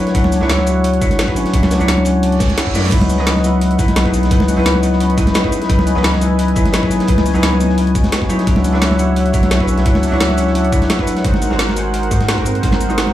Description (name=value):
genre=liquid drum and bass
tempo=173 BPM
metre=4/4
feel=swing 53% on 16ths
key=unclear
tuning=A4 = 440 Hz
part: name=vintage hollow-body jazz guitar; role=accompaniment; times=0.0-13.1 s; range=E3 to D#5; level=-17 LUFS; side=left 1 dB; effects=analog delay
part: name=warm analog pad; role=sustained chords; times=0.0-13.1 s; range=A#4 to G#5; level=-22 LUFS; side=equal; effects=chorus, sidechain pumping
part: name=concert harp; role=arpeggios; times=0.0-13.1 s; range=B3 to G#4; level=-25 LUFS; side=equal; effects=analog delay
part: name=warm sub bass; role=bass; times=0.1-13.1 s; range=G#1 to G#2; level=-18 LUFS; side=equal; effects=none
part: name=crunchy breakbeat drum kit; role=drums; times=0.1-13.1 s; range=hi-hat, snare drum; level=-26 LUFS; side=right 1 dB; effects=high-pass filter on hats, high-pass filter on snare, high-pass filter on room
part: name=drum and bass drum kit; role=drums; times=0.1-13.1 s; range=cabasa, crash cymbal, hi-hat, snare drum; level=-22 LUFS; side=equal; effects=overdrive
part: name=electronic kick drum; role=drums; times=0.1-12.7 s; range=none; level=-18 LUFS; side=equal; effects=overdrive
part: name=congas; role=percussion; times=0.2-13.1 s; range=none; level=-22 LUFS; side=right 1 dB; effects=none
part: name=reverse cymbal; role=sound effects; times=2.3-2.9 s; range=none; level=-26 LUFS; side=right 5 dB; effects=none
room=moderate plate reverb, RT60 0.9 s, studio ambience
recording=dreamy mix soaked in reverb, small room reverb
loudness=-12 LUFS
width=side -13 dB against mid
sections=0.0-13.1 A section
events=reverse cymbal 2.3-2.9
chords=0.0 Dmaj9; 2.9 C#m11; 8.5 Dmaj9; 11.2 G#7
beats=| 0.15 0.49 0.84 1.19 | 1.53 1.88 2.23 2.58 | 2.92 3.27 3.62 3.96 | 4.31 4.66 5.00 5.35 | 5.70 6.04 6.39 6.74 | 7.08 7.43 7.78 8.12 | 8.47 8.82 9.16 9.51 | 9.86 10.21 10.55 10.90 | 11.25 11.59 11.94 12.29 | 12.63 12.98